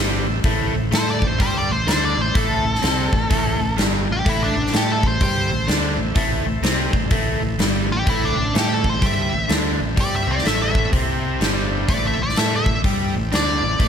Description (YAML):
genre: blues rock power trio and southern rock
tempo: 126 BPM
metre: 4/4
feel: swing 62% on 8ths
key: A minor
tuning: A4 = 439 Hz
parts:
  - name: overdriven tonewheel organ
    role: sustained chords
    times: 0.0-13.9 s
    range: C4 to C5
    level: -34 LUFS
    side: right 3 dB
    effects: none
  - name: overdriven electric guitar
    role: riff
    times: 0.0-13.9 s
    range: G2 to A4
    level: -23 LUFS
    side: left 1 dB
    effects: none
  - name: fuzz fingered electric bass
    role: bass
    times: 0.0-13.9 s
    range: G1 to A2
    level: -24 LUFS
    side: equal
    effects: overdrive
  - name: big rock drum kit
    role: drums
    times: 0.4-13.9 s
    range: hi-hat, kick drum, snare drum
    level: -21 LUFS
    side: equal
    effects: none
  - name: nasal lead guitar with a parked wah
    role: melody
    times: 0.9-13.9 s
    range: D4 to E5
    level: -24 LUFS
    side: equal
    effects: overdrive
room: light reverb, studio reverb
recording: none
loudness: -17 LUFS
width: side -8 dB against mid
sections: 0.0-13.9 A section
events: none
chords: 0.0 Am